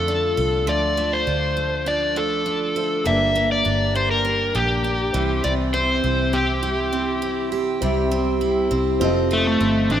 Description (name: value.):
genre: acoustic pop.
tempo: 101 BPM.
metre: 4/4.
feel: straight.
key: unclear.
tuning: A4 = 439 Hz.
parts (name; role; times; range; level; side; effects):
overdriven slide guitar; melody; 0.0-10.0 s; A3 to E5; -21 LUFS; left 1 dB; none.
picked steel-string acoustic guitar; accompaniment; 0.0-10.0 s; G2 to A4; -30 LUFS; right 1 dB; double-tracked left and right.
warm upright piano; accompaniment; 0.0-10.0 s; A3 to E5; -31 LUFS; left 4 dB; none.
hand-pumped harmonium; sustained chords; 0.0-10.0 s; F4 to C6; -35 LUFS; equal; none.
picked steel-string acoustic guitar; arpeggios; 0.0-10.0 s; E3 to A4; -25 LUFS; right 3 dB; none.
vintage muted fingered electric bass; bass; 0.0-10.0 s; F1 to F2; -26 LUFS; equal; none.
room: wet lush hall reverb, RT60 2.5 s.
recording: rough home demo mix.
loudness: -18 LUFS.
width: side -10 dB against mid.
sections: 0.0-7.8 A section; 7.8-10.0 B section.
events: none.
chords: 0.0 Dm; 3.1 Gm; 5.1 C; 9.0 F7.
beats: 0.08 | 0.68 1.27 1.87 2.46 | 3.06 3.65 4.25 4.84 | 5.44 6.04 6.63 7.22 | 7.82 8.42 9.01 9.61.